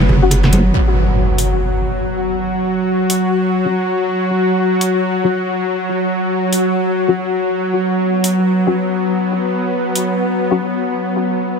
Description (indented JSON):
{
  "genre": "deep dubstep",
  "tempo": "140 BPM",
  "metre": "4/4",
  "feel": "swing 59% on 16ths, half-time",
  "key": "unclear",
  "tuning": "A4 = 440 Hz",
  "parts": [
    { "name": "bowed-like drone", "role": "sustained chords", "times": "0.0-11.6 s", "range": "F#3 to F#4", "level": "-16 LUFS", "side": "equal", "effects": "built-in reverb" },
    { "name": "deep soft wobble bass", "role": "bass", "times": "0.0-0.7 s", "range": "F#1", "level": "-12 LUFS", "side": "equal", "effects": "chorus" },
    { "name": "congas and bongos", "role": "percussion", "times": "0.0-0.6 s", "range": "none", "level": "-18 LUFS", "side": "right 2 dB", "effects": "dub echo" },
    { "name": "filtered dub chord stab", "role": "stabs", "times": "0.2-10.6 s", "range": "F#3 to F#4", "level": "-22 LUFS", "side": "left 5 dB", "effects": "ensemble chorus, dub echo" },
    { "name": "deep house drum kit", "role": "drums", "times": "0.3-10.1 s", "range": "hi-hat, snare drum", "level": "-22 LUFS", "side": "left 1 dB", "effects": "overdrive" },
    { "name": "impact", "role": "sound effects", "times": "0.7-2.5 s", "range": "none", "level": "-17 LUFS", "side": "equal", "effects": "none" }
  ],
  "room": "moderate huge ambient reverb, RT60 4.7 s",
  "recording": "none",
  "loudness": "-14 LUFS",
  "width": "side -5 dB against mid",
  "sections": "0.7-11.6 A section",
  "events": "impact 0.7-2.5",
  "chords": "0.0 F#5"
}